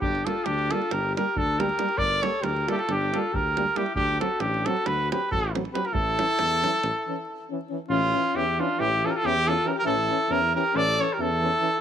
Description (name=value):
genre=balkan folk, Balkan brass band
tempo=275 BPM (eighths)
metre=9/8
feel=straight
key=A phrygian dominant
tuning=A4 = 440 Hz
part: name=clear trumpet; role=melody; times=0.0-11.8 s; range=F4 to D5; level=-25 LUFS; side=right 2 dB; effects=none
part: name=warm alto saxophone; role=second line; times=0.0-11.8 s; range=C#4 to Bb4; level=-31 LUFS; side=left 9 dB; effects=none
part: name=mellow tuba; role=bass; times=0.0-11.5 s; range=G1 to E2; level=-31 LUFS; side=equal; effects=none
part: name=davul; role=percussion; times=0.0-6.9 s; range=none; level=-32 LUFS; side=right 3 dB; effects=none
part: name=clear trombone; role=accompaniment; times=0.3-11.7 s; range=E3 to G3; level=-34 LUFS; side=right 8 dB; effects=none
part: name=warm euphonium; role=accompaniment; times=0.3-11.7 s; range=Bb3 to C#4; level=-34 LUFS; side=left 11 dB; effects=none
room=light reverb, small room ambience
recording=1960s-style stereo with parts hard left and right, vinyl crackle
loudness=-22 LUFS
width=side -9 dB against mid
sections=0.0-7.9 A section; 7.9-11.8 B section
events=break 6.9-7.9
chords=0.0 Gm; 4.0 D7; 5.9 A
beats=| 0.02 0.23 0.45 0.67 0.89 1.11 1.33 1.55 1.76 | 1.98 2.20 2.42 2.64 2.86 3.08 3.29 3.51 3.73 | 3.95 4.17 4.39 4.61 4.83 5.04 5.26 5.48 5.70 | 5.92 6.14 6.36 6.57 6.79 7.01 7.23 7.45 7.67 | 7.88 8.10 8.32 8.54 8.76 8.97 9.19 9.41 9.63 | 9.84 10.06 10.28 10.50 10.71 10.93 11.15 11.37 11.58 | 11.80